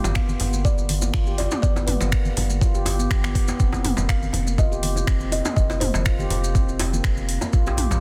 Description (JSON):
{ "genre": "afro house", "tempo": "122 BPM", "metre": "4/4", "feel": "swing 54% on 16ths", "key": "unclear", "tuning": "A4 = 440 Hz", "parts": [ { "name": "round analog bass", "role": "bass", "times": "0.0-8.0 s", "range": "F1 to Bb1", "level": "-28 LUFS", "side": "equal", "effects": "sidechain pumping" }, { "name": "congas", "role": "percussion", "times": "0.0-8.0 s", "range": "none", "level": "-34 LUFS", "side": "equal", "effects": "none" }, { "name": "djembe", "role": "percussion", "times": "0.0-8.0 s", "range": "none", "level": "-33 LUFS", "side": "equal", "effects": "none" }, { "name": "maracas", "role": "percussion", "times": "0.0-8.0 s", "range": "none", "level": "-37 LUFS", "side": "equal", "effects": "none" }, { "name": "kalimba", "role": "melody", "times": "0.2-6.8 s", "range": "B4 to F5", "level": "-34 LUFS", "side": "equal", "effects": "dub echo" }, { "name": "handpan", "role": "arpeggios", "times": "0.2-7.8 s", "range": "Bb3 to G4", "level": "-32 LUFS", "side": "equal", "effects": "sidechain pumping, dub echo" }, { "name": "deep house drum kit", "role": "drums", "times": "0.2-7.9 s", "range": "finger snaps, hi-hat, toms", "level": "-31 LUFS", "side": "equal", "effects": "overdrive, studio reverb, soft clipping on snare" }, { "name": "electronic kick drum", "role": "drums", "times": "0.2-7.6 s", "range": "none", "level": "-23 LUFS", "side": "equal", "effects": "studio reverb" } ], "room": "small room ambience", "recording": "dense, heavily limited modern master", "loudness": "-22 LUFS", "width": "mono", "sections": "0.0-8.0 A section", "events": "none", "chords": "0.0 G; 3.6 F5", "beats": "0.16 0.65 1.14 | 1.63 2.12 2.62 3.11 | 3.60 4.09 4.58 5.07 | 5.57 6.06 6.55 7.04 | 7.53" }